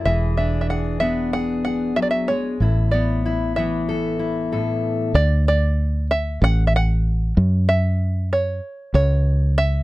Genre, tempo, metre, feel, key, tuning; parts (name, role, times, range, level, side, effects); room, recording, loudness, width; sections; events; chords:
indie folk with a building arrangement; 94 BPM; 4/4; straight; A4 = 441 Hz
open-back banjo; melody; 0.0-9.8 s; C#5 to F#5; -23 LUFS; right 1 dB
fingerpicked steel-string acoustic guitar; accompaniment; 0.0-5.2 s; A2 to A4; -22 LUFS; left 2 dB
fingered electric bass; bass; 0.1-9.8 s; E1 to F#2; -19 LUFS; equal
little or no reverb; dry, close 1970s-style studio recording; -18 LUFS; side -18 dB against mid
0.0-5.1 A section; 5.1-9.8 B section
0.1 E7; 2.6 Asus2; 5.1 D; 7.4 F#5